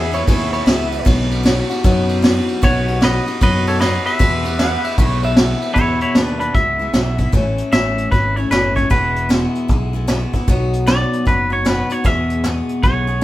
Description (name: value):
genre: honky-tonk and classic country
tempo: 153 BPM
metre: 4/4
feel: swing 64% on 8ths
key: E major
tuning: A4 = 439 Hz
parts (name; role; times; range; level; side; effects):
- pedal steel guitar; second line; 0.0-1.0, 4.6-5.7 s; E4 to F#5; -22 LUFS; right 1 dB; none
- picked steel-string acoustic guitar; accompaniment; 0.0-13.2 s; E2 to G#4; -22 LUFS; left 2 dB; none
- fingered electric bass; bass; 0.0-13.2 s; E1 to F#2; -21 LUFS; equal; none
- vintage brush drum kit; drums; 0.1-13.0 s; hi-hat, kick drum, ride cymbal, snare drum; -17 LUFS; equal; none
- twangy electric guitar; melody; 2.6-13.2 s; D4 to E5; -20 LUFS; equal; none
room: moderate stone room reverb, RT60 1.0 s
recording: band playing live in one room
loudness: -14 LUFS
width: side -15 dB against mid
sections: 0.0-5.8 A section; 5.8-13.2 B section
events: clean electric guitar solo 5.8-13.2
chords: 0.0 E; 1.1 B; 4.2 E; 7.3 A; 8.9 E; 10.5 B; 12.0 E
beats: 0.28 0.67 | 1.06 1.45 1.84 2.23 | 2.63 3.02 3.41 3.80 | 4.19 4.59 4.98 5.37 | 5.76 6.16 6.55 6.94 | 7.33 7.73 8.12 8.51 | 8.91 9.30 9.69 10.08 | 10.48 10.87 11.26 11.66 | 12.05 12.44 12.83 13.23